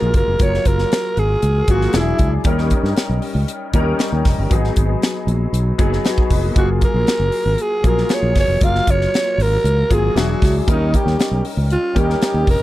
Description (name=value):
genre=polished 1980s jazz-funk pop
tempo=117 BPM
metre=4/4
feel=straight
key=F# major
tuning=A4 = 443 Hz
part: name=breathy alto saxophone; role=melody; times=0.0-2.3, 6.6-12.6 s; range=D#4 to E#5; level=-20 LUFS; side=right 1 dB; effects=none
part: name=warm concert grand piano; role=accompaniment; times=0.0-12.6 s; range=F#3 to D#5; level=-22 LUFS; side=left 2 dB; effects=ensemble chorus
part: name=fretless electric bass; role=bass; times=0.0-12.6 s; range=E1 to G2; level=-18 LUFS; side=equal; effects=none
part: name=crisp fusion drum kit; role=drums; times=0.1-12.6 s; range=hi-hat, kick drum, snare drum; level=-18 LUFS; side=equal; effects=none
room=light reverb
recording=dry, close 1970s-style studio recording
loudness=-14 LUFS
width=side -15 dB against mid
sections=0.0-12.6 A section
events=none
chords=0.0 F#maj9; 1.9 E9; 2.5 D#7; 4.5 G#m7; 6.6 F#maj9; 10.2 E9; 10.7 D#7